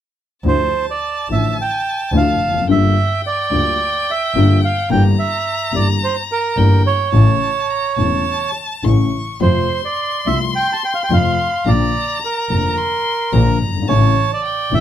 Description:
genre	tango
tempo	108 BPM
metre	4/4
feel	rubato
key	D minor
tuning	A4 = 440 Hz
part	clear violin	second line	0.4-14.8 s	G5 to C#6	-25 LUFS	left 5 dB	none
part	dark baby grand piano	accompaniment	0.4-14.8 s	E1 to G4	-18 LUFS	left 5 dB	none
part	clear double bass	bass	0.4-14.8 s	E1 to F2	-17 LUFS	right 1 dB	none
part	bandoneon	melody	0.5-14.8 s	Bb4 to A5	-19 LUFS	right 4 dB	none
room	moderate club reverb, RT60 0.5 s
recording	none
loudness	-14 LUFS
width	side -10 dB against mid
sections	0.4-14.8 A section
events	none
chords	0.4 Dmadd9; 2.7 Gm7; 4.9 Edim/G; 7.1 A; 9.4 F; 11.7 Bb; 13.9 A

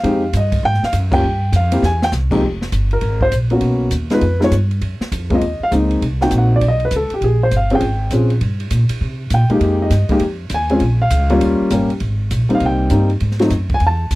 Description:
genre	jazz piano trio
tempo	200 BPM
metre	4/4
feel	swing 63% on 8ths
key	F minor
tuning	A4 = 440 Hz
part	warm grand piano	melody	0.0-14.2 s	F2 to A5	-16 LUFS	left 1 dB	none
part	upright bass	bass	0.0-14.2 s	F1 to C3	-17 LUFS	equal	none
part	open jazz drum kit	drums	0.0-14.2 s	crash cymbal, hi-hat, kick drum, ride cymbal, snare drum	-26 LUFS	equal	none
room	little or no reverb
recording	dry, close 1970s-style studio recording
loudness	-14 LUFS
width	side -19 dB against mid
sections	0.0-2.4 A section; 2.4-12.0 B section; 12.0-14.2 B section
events	band accent 1.1; drum fill 1.8; grand piano solo 2.4-14.2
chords	0.0 Fm9; 1.2 Fsus2; 1.8 C; 2.4 Fmadd9; 3.6 Abm11 (rootless); 4.2 F(b5, no3); 4.8 Gbmaj9#11; 6.0 Cm7b5; 6.6 Bsus2; 7.2 Bbm7; 8.4 Gm; 9.0 C5; 9.6 Fm11; 10.8 Bbm; 11.4 Eb7; 12.0 Abmaj9; 13.2 Ab7(no3)

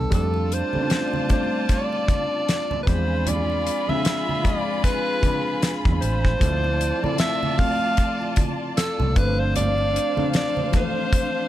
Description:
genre	lush 1970s-style soul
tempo	76 BPM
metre	4/4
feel	swing 58% on 16ths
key	unclear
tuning	A4 = 440 Hz
part	bright alto saxophone	melody	0.0-11.5 s	A4 to F5	-26 LUFS	equal	none
part	overdriven reed electric piano	accompaniment	0.0-11.5 s	E3 to A5	-27 LUFS	left 1 dB	phaser
part	vintage muted fingered electric bass	bass	0.0-10.2 s	G1 to F2	-24 LUFS	equal	none
part	dark studio violin section	second line	0.1-11.5 s	D4 to B5	-30 LUFS	equal	none
part	damped 70s drum kit	drums	0.1-11.3 s	hi-hat, kick drum, snare drum	-22 LUFS	equal	none
part	congas	percussion	0.1-11.3 s	none	-32 LUFS	right 4 dB	none
room	small room ambience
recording	none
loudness	-20 LUFS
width	side -13 dB against mid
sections	0.1-11.5 A section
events	none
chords	0.1 F6; 2.9 E7b9b13; 6.4 Dm7; 9.2 G7sus4

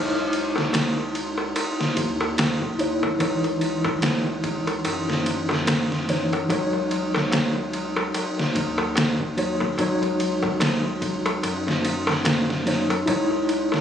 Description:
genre	trip hop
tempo	73 BPM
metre	4/4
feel	swing 57% on 16ths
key	C# minor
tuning	A4 = 436 Hz
part	mellow tine electric piano	accompaniment	0.0-13.8 s	E3 to C#5	-25 LUFS	left 1 dB	tremolo, low-pass filter, tape echo
part	warm sub bass	bass	0.0-13.8 s	C#2 to F#2	-33 LUFS	equal	none
part	darbuka	percussion	0.1-13.8 s	none	-29 LUFS	equal	none
part	trip hop sampler-style drum kit	drums	0.3-13.8 s	kick drum, ride cymbal, snare drum	-24 LUFS	equal	overdrive
room	light reverb, digital ambience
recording	recorded on a phone in the room, club reverb, compression, nothing above 10.5 kHz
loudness	-21 LUFS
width	side -9 dB against mid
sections	0.0-13.8 A section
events	filter sweep on tine electric piano 0.0-13.8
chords	0.0 C#madd9; 6.5 D#m7/C#; 13.1 C#madd9

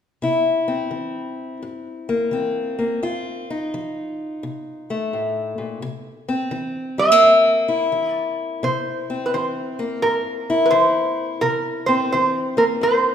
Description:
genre	acoustic country blues, solo or duo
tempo	86 BPM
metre	4/4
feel	swing 66% on 8ths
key	C mixolydian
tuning	A4 = 437 Hz
part	fingerpicked steel-string acoustic guitar	accompaniment	0.2-13.1 s	F2 to F4	-22 LUFS	left 2 dB	none
part	metal-body resonator slide guitar	melody	7.0-13.1 s	Bb4 to E5	-17 LUFS	right 1 dB	none
room	wet recital hall reverb, RT60 1.5 s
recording	recorded in a church or concert hall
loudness	-18 LUFS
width	side -8 dB against mid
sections	0.2-5.8 A section; 5.8-13.1 B section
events	none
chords	0.2 C7; 3.0 F7; 5.8 C7

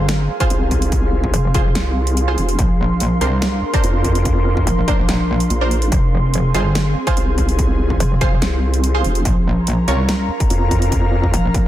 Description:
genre	heavy wobble dubstep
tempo	144 BPM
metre	4/4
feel	half-time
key	F minor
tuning	A4 = 440 Hz
part	metallic wobble bass	bass	0.0-11.7 s	F1 to C2	-17 LUFS	equal	chorus, overdrive
part	airy breathy pad	texture	0.0-11.7 s	C4 to C6	-24 LUFS	equal	chorus, sidechain pumping
part	dubstep drum kit	drums	0.1-11.6 s	hi-hat, snare drum	-25 LUFS	equal	none
part	orchestra-hit-like synth stab	stabs	0.4-10.0 s	D4 to Db5	-25 LUFS	right 2 dB	built-in reverb, vintage 12-bit sampler grit, dub echo
part	electronic kick drum	drums	0.4-11.6 s	none	-18 LUFS	equal	distortion
part	vowel-sweep wobble bass	bass	0.5-11.3 s	F1 to F2	-17 LUFS	equal	chorus, overdrive
room	little or no reverb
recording	dense, heavily limited modern master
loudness	-14 LUFS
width	side -13 dB against mid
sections	0.0-11.7 A section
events	none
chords	0.0 Fm; 2.6 Bbadd9; 5.9 Fm; 9.3 Bbm

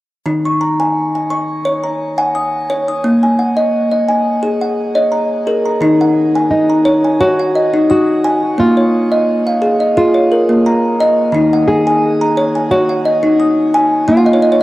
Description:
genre	world meditative, meditative tuned percussion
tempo	87 BPM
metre	4/4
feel	straight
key	Eb minor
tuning	A4 = 440 Hz
part	kalimba	arpeggios	0.3-14.6 s	Eb3 to Eb6	-12 LUFS	equal	shimmer reverb
part	nylon-string guitar	melody	6.5-14.6 s	Eb4 to Ab4	-15 LUFS	right 1 dB	cassette tape, shimmer reverb, tape echo
room	wet spring reverb, RT60 2.2 s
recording	home recording on cassette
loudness	-11 LUFS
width	side -17 dB against mid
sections	0.3-5.8 A section; 5.8-14.6 B section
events	kalimba fill 14.2-14.6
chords	0.3 Ebm; 3.0 Bbm; 5.8 Ebm; 8.6 Bbm; 11.3 Ebm; 14.1 Bbm

